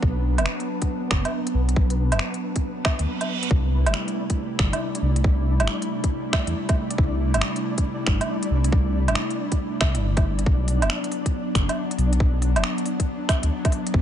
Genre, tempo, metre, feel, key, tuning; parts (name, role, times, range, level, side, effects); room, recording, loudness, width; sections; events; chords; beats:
future garage; 138 BPM; 4/4; swing 66% on 16ths; A4 = 440 Hz
airy breathy pad; sustained chords; 0.0-14.0 s; C3 to E4; -28 LUFS; equal; chorus, sidechain pumping
dark detuned saw bass; bass; 0.0-14.0 s; F#1 to E2; -22 LUFS; equal; sidechain pumping
electronic kick drum; drums; 0.0-14.0 s; -22 LUFS; equal; overdrive
flickering grainy texture; texture; 0.0-14.0 s; B3 to D5; -34 LUFS; right 1 dB; built-in reverb
organic electronic drum kit; drums; 0.4-13.9 s; finger snaps, hi-hat, woodblock; -26 LUFS; right 2 dB; overdrive
reverse cymbal; sound effects; 3.0-3.5 s; -34 LUFS; right 9 dB
little or no reverb; nothing above 10.5 kHz; -20 LUFS; side -10 dB against mid
0.0-3.5 A section; 3.5-14.0 B section
reverse cymbal 3.0-3.5
0.0 Bm; 3.5 C6; 10.5 Bm
| 0.03 0.46 0.90 1.33 | 1.77 2.20 2.64 3.07 | 3.51 3.94 4.38 4.81 | 5.25 5.68 6.12 6.55 | 6.98 7.42 7.85 8.29 | 8.72 9.16 9.59 10.03 | 10.46 10.90 11.33 11.77 | 12.20 12.64 13.07 13.51 | 13.94